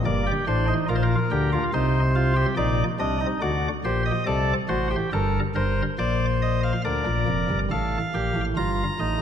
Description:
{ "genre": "classical, baroque-style 3-part fugue for pipe organ", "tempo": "70 BPM", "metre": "4/4", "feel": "straight", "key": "unclear", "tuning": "A4 = 440 Hz", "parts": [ { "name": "chamber organ, cornet", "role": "solo", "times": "0.0-9.2 s", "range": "F1 to Bb5", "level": "-21 LUFS", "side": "equal", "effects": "none" } ], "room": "wet scoring stage reverb, RT60 1.8 s", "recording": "minimal, uncompressed stereo recording", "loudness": "-21 LUFS", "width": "side -8 dB against mid", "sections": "0.0-6.8 A section; 6.8-9.2 B section", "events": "none", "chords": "0.1 Gm; 1.7 Cm; 3.4 D7; 5.1 Gm; 6.8 Bb; 8.6 Eb/G" }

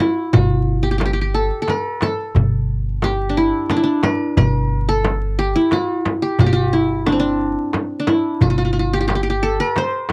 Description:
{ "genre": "Arabic maqam ensemble", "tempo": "89 BPM", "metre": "3/4", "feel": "straight", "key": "G maqam rast", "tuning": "A4 = 440 Hz", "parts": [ { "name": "qanun", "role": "melody", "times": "0.0-10.1 s", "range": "C4 to C5", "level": "-21 LUFS", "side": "equal", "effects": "none" }, { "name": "upright bass", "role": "bass", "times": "0.3-9.6 s", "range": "G1", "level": "-24 LUFS", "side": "equal", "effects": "none" }, { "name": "darbuka", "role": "percussion", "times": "0.3-10.1 s", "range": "none", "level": "-24 LUFS", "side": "equal", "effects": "none" }, { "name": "frame drum", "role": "percussion", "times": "0.3-10.1 s", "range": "none", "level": "-23 LUFS", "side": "equal", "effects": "none" } ], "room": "light reverb", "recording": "vinyl crackle", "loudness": "-18 LUFS", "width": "mono", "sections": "0.3-10.1 A section", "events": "none", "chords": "none" }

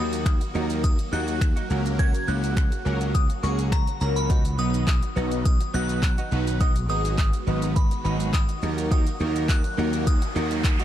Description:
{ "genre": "dance-pop", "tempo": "104 BPM", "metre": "4/4", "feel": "straight", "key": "unclear", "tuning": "A4 = 440 Hz", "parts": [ { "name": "glassy synth bell", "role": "melody", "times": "0.0-10.8 s", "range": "A#5 to G#6", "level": "-32 LUFS", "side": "left 1 dB", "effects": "chorus, phaser, digital delay" }, { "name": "big bright polysynth", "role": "accompaniment", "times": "0.0-10.6 s", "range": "F#3 to B4", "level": "-31 LUFS", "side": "right 1 dB", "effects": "chorus, phaser" }, { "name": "supersaw chords", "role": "sustained chords", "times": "0.0-10.8 s", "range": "C#3 to F#4", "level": "-34 LUFS", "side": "right 1 dB", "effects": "phaser, sidechain pumping" }, { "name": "direct-recorded clean electric guitar", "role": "riff", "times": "0.0-10.8 s", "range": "A#3 to F#4", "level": "-36 LUFS", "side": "right 4 dB", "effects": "analog chorus" }, { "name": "gritty slap bass", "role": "bass", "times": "0.0-10.8 s", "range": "G#1 to D#2", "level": "-26 LUFS", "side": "equal", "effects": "overdrive, sidechain pumping" }, { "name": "deep house drum kit", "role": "drums", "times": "0.1-10.8 s", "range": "finger snaps, handclaps, hi-hat, kick drum, shaker", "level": "-23 LUFS", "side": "equal", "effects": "none" }, { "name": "riser", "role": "sound effects", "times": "9.6-10.8 s", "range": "none", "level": "-36 LUFS", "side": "right 1 dB", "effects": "none" } ], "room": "digital ambience", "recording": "dark, warm production", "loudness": "-21 LUFS", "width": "side -11 dB against mid", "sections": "0.0-10.8 A section", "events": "riser 9.6-10.8", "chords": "0.0 D#m; 1.7 F#/C#; 4.3 B; 6.6 G#m7; 8.6 D#m" }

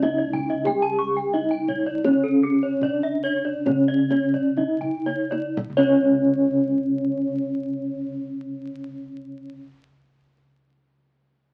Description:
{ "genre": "Balinese gamelan", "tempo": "57-98 BPM", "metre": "4/4", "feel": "straight", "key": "unclear", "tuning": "A4 = 438 Hz", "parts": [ { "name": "gamelan-type bronze metallophone", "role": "melody", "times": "0.0-9.6 s", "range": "C#4 to G#4-45c", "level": "-25 LUFS", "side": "equal", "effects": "none" }, { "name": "gamelan-type bronze metallophone", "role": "accompaniment", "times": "0.0-9.6 s", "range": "C#3 to G#3-45c", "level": "-44 LUFS", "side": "equal", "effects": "none" }, { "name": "gamelan-type bronze metallophone", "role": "arpeggios", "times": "0.0-9.6 s", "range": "C#5 to G#5-45c", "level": "-30 LUFS", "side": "equal", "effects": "none" }, { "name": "gamelan-type bossed gongs", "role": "bass", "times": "0.0-9.5 s", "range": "C#2 to D4", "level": "-32 LUFS", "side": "equal", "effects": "none" }, { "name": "kendang", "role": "percussion", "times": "0.0-6.1 s", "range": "none", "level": "-35 LUFS", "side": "equal", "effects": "none" }, { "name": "gamelan-type bronze metallophone", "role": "arpeggios", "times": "0.2-9.6 s", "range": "G#4-45c to C#6", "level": "-31 LUFS", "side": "equal", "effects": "none" } ], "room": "moderate studio ambience, RT60 0.4 s", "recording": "very old 78 rpm record, vinyl crackle", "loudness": "-23 LUFS", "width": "mono", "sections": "0.0-5.6 A section; 5.6-9.8 B section", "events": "slowing down 0.0-5.6; drum fill 4.3-5.6", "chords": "none" }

